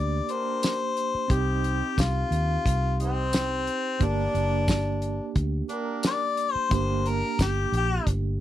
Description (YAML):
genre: straight-eighth soul blues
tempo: 89 BPM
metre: 4/4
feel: swing 56% on 16ths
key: G minor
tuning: A4 = 438 Hz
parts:
  - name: mellow harmonica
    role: melody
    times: 0.0-8.1 s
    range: C4 to D5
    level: -28 LUFS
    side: left 4 dB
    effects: none
  - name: tine electric piano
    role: accompaniment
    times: 0.0-8.4 s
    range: Bb3 to G4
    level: -32 LUFS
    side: right 6 dB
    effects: fast stereo tremolo
  - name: vintage muted fingered electric bass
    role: bass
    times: 0.0-8.4 s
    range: F#1 to Eb2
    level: -27 LUFS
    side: equal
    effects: none
  - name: mellow horn section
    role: sustained chords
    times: 0.3-7.4 s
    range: Bb3 to C5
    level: -36 LUFS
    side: right 3 dB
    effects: none
  - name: warm soul drum kit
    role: drums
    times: 0.3-8.2 s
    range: hi-hat, kick drum, snare drum, tambourine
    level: -26 LUFS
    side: equal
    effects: none
room: little or no reverb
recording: dry, close 1970s-style studio recording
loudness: -23 LUFS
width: side -12 dB against mid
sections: 0.0-8.4 A section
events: harmonica solo 0.0-8.4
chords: 0.0 Gm; 1.3 Cm; 4.0 Gm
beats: 0.62 | 1.30 1.98 2.65 3.33 | 4.01 4.68 5.36 6.04 | 6.71 7.39 8.07